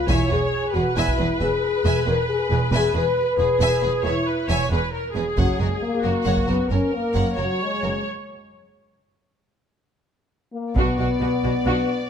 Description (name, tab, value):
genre	cinematic, epic orchestral film score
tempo	90 BPM (dotted quarters)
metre	12/8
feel	straight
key	unclear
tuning	A4 = 440 Hz
part	rich studio viola section	accompaniment	0.0-11.9 s	F#4 to C#5	-27 LUFS	right 2 dB	none
part	dark French horn section	sustained chords	0.0-12.1 s	F#3 to B4	-23 LUFS	left 4 dB	none
part	warm symphonic violin section	second line	0.1-11.9 s	D4 to G#5	-30 LUFS	left 1 dB	none
part	clear symphonic double bass section	bass	0.1-11.7 s	E1 to B1	-26 LUFS	right 3 dB	none
part	rich symphonic cello section	bass	0.1-11.7 s	E2 to B2	-26 LUFS	right 2 dB	none
part	solo taiko drums	drums	0.1-1.3, 5.4-6.6, 10.8-11.6 s	none	-26 LUFS	equal	none
part	warm symphonic violin section	melody	10.8-12.1 s	D5	-33 LUFS	left 2 dB	none
room	moderate recital hall reverb, RT60 1.5 s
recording	close, detailed microphones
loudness	-19 LUFS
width	side -8 dB against mid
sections	0.0-10.8 A section; 10.8-12.1 B section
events	break 8.1-10.8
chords	0.1 E; 5.4 F#; 10.8 Bm